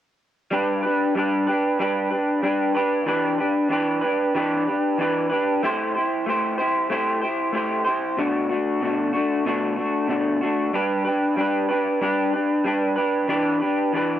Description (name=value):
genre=indie pop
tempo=94 BPM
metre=4/4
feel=straight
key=G major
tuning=A4 = 440 Hz
part: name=electric guitar through a small old amp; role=solo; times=0.5-14.2 s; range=B2 to C5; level=-20 LUFS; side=equal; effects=analog chorus, vibrato effect
room=moderate small room reverb, RT60 0.5 s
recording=worn, warbling old tape, cassette tape, warbly pitch drift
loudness=-20 LUFS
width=side -11 dB against mid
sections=0.5-14.2 A section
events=none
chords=0.5 G; 3.1 Em7; 5.6 Am7; 8.2 Bm7; 10.7 G; 13.3 Em7